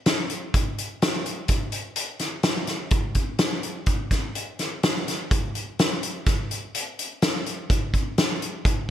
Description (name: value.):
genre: rock.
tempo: 126 BPM.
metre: 5/4.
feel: straight.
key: none.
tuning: none.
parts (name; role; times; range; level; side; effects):
loose indie drum kit; drums; 0.1-8.8 s; hi-hat, kick drum, snare drum; -23 LUFS; equal; none.
room: moderate lush hall reverb, RT60 1.7 s.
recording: bright 1980s-style digital production.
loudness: -23 LUFS.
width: side -11 dB against mid.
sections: 0.0-8.9 A section.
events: none.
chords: none.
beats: 0.07 | 0.54 1.02 1.50 1.98 2.46 | 2.93 3.41 3.89 4.37 4.84 | 5.32 5.79 6.27 6.75 7.22 | 7.70 8.18 8.65.